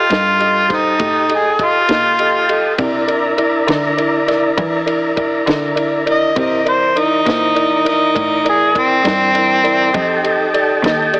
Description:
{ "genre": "slow blues", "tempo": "67 BPM (dotted quarters)", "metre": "12/8", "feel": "straight", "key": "unclear", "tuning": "A4 = 439 Hz", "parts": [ { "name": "mellow harmonica", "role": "melody", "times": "0.0-10.5 s", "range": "C4 to Eb5", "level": "-14 LUFS", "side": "equal", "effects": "overdrive" }, { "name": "clear upright piano", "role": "accompaniment", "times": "0.0-11.2 s", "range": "E4 to Eb5", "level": "-18 LUFS", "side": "equal", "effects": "none" }, { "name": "tonewheel organ", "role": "sustained chords", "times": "0.0-11.2 s", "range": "E3 to Eb5", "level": "-20 LUFS", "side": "equal", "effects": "slow rotary speaker" }, { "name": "dark cello", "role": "bass", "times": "0.0-11.2 s", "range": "Eb2 to E3", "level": "-24 LUFS", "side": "equal", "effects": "none" }, { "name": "compact cocktail drum kit", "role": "drums", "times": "0.1-11.2 s", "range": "kick drum, ride cymbal, snare drum", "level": "-24 LUFS", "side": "equal", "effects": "none" } ], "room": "moderate spring reverb, RT60 2.2 s", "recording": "heavily compressed radio sound, multiband compression, AM radio sound", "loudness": "-12 LUFS", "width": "side -24 dB against mid", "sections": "0.0-11.2 A section", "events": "harmonica solo 0.0-11.2", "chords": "0.0 F9; 2.8 C9; 9.9 F9" }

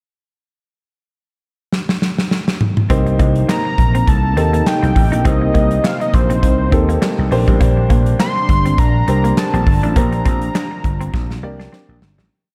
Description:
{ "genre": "early-eighties boogie funk", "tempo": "102 BPM", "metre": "4/4", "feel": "swing 56% on 16ths", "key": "C dorian", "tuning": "A4 = 440 Hz", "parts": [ { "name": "modern studio drum kit", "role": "drums", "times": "1.7-12.3 s", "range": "handclaps, hi-hat, kick drum, snare drum, toms", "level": "-19 LUFS", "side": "equal", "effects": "none" }, { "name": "warm grand piano", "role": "accompaniment", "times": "2.9-12.0 s", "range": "Bb3 to D5", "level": "-25 LUFS", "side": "equal", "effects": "none" }, { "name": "brassy analog pad", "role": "sustained chords", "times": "2.9-12.3 s", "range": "C3 to Eb4", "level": "-28 LUFS", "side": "equal", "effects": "chorus, tremolo" }, { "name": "clean electric guitar", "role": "riff", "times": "2.9-12.3 s", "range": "G3 to Eb4", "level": "-28 LUFS", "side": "equal", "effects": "lush chorus" }, { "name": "vintage slap bass", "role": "bass", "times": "2.9-12.3 s", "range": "G1 to Eb2", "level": "-19 LUFS", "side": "equal", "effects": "none" }, { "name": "fat analog lead", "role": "melody", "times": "3.5-11.7 s", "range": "C5 to C6", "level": "-24 LUFS", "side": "equal", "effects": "delay" } ], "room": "moderate church reverb, RT60 3.4 s", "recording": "dreamy mix soaked in reverb", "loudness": "-15 LUFS", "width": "mono", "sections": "0.5-2.9 pickup bar; 2.9-12.3 verse", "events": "drum fill 1.7-2.9, 11.1-12.3; fade-out 10.0-12.3", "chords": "0.5 N.C.; 2.9 Cm7; 7.3 Bb69" }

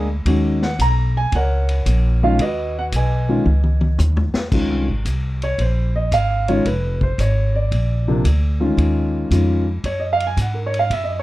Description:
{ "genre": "jazz piano trio", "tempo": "113 BPM", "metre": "4/4", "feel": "swing 68% on 8ths", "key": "Db major from 4.5 s", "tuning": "A4 = 439 Hz", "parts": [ { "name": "dark concert grand piano", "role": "melody", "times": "0.0-11.2 s", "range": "C3 to A#5", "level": "-20 LUFS", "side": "equal", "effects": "none" }, { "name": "upright bass", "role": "bass", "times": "0.0-11.2 s", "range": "F1 to Ab2", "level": "-18 LUFS", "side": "equal", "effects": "none" }, { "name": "vintage drum kit", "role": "drums", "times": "0.3-11.1 s", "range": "crash cymbal, hi-hat, kick drum, ride cymbal, snare drum, toms", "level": "-27 LUFS", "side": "left 1 dB", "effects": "none" } ], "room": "light reverb", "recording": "dark, warm production", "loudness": "-16 LUFS", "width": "side -17 dB against mid", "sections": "0.0-4.5 A section; 4.5-11.2 B section", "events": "drum fill 3.5-4.5; grand piano solo 4.5-11.2", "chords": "0.3 D#m7; 2.4 G#m7; 3.5 C#5; 4.5 Dbmaj7; 6.7 Fm; 7.7 Bb; 8.8 Ebm9" }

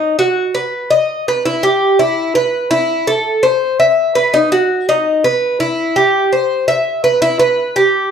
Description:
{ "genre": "latin", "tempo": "166 BPM", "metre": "4/4", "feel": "straight", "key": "E minor", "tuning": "A4 = 439 Hz", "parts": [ { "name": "Cuban tres", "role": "solo", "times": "0.0-8.1 s", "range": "D#4 to E5", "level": "-12 LUFS", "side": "equal", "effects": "none" } ], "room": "moderate large studio reverb, RT60 0.9 s", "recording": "dark, warm production", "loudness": "-12 LUFS", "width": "side -7 dB against mid", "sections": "0.0-7.2 A section", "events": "none", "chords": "none" }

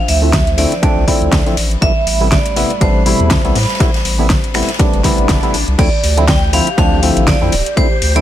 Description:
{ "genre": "deep house", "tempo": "121 BPM", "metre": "4/4", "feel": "swing 56% on 16ths", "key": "D minor", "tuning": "A4 = 440 Hz", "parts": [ { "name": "vibraphone with hard mallets", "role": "melody", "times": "0.0-8.2 s", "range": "C5 to G5", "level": "-20 LUFS", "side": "right 2 dB", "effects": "dub echo" }, { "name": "dark analog pad", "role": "sustained chords", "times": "0.0-5.7 s", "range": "F3 to B5", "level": "-27 LUFS", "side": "equal", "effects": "chorus, vintage 12-bit sampler grit, sidechain pumping" }, { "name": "round analog bass", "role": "bass", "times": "0.1-8.2 s", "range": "D1 to A2", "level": "-16 LUFS", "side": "equal", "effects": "sidechain pumping" }, { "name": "deep house drum kit", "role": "drums", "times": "0.1-8.2 s", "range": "crash cymbal, finger snaps, hi-hat, snare drum", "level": "-19 LUFS", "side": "equal", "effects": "overdrive" }, { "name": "street-band drum kit", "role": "drums", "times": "0.1-8.2 s", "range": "ride cymbal, snare drum", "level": "-26 LUFS", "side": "left 3 dB", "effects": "high-pass filter on cymbals, high-pass filter on snare, high-pass filter on room" }, { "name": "percussive organ stab", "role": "stabs", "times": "0.2-8.2 s", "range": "B2 to E4", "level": "-18 LUFS", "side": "equal", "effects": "chorus, sidechain pumping" }, { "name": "electronic kick drum", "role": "drums", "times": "0.3-7.9 s", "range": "none", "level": "-15 LUFS", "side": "equal", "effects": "overdrive" }, { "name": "swell", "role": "sound effects", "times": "5.1-5.8 s", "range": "none", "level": "-25 LUFS", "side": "equal", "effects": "none" }, { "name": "soft string machine", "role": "texture", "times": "5.8-8.2 s", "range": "G4 to G5", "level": "-26 LUFS", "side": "equal", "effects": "phaser, ensemble chorus" } ], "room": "small room ambience", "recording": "none", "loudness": "-11 LUFS", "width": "side -12 dB against mid", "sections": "0.0-5.8 A section; 5.8-8.2 B section", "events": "swell 5.1-5.8; drop 5.8-8.2", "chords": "0.0 Dm9; 1.6 Am9; 5.8 Dm9" }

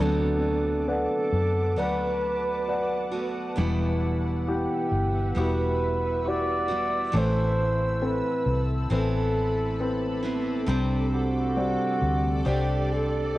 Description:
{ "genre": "pop", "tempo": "67 BPM", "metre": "4/4", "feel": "straight", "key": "E minor", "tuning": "A4 = 438 Hz", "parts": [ { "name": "breathy flugelhorn", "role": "melody", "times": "0.0-13.4 s", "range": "F#4 to D5", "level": "-28 LUFS", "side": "right 1 dB", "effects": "cassette tape" }, { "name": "warm grand piano", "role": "accompaniment", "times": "0.0-13.4 s", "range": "E3 to F#5", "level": "-30 LUFS", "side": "left 2 dB", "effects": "cassette tape" }, { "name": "granular cloud pad", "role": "sustained chords", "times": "0.0-13.4 s", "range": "A4 to E6", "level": "-37 LUFS", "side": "equal", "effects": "built-in reverb, cassette tape" }, { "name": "picked steel-string acoustic guitar", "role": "arpeggios", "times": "0.0-13.4 s", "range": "E2 to G4", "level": "-31 LUFS", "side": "right 3 dB", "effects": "cassette tape" }, { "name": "vintage muted fingered electric bass", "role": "bass", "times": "0.0-13.4 s", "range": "E1 to F#2", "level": "-28 LUFS", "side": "equal", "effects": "none" } ], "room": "light reverb, studio ambience", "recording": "home recording on cassette", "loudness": "-23 LUFS", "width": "side -17 dB against mid", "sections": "0.0-13.4 A section", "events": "none", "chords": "0.0 D6; 3.6 Emadd9; 7.1 Amadd9; 10.7 Csus2" }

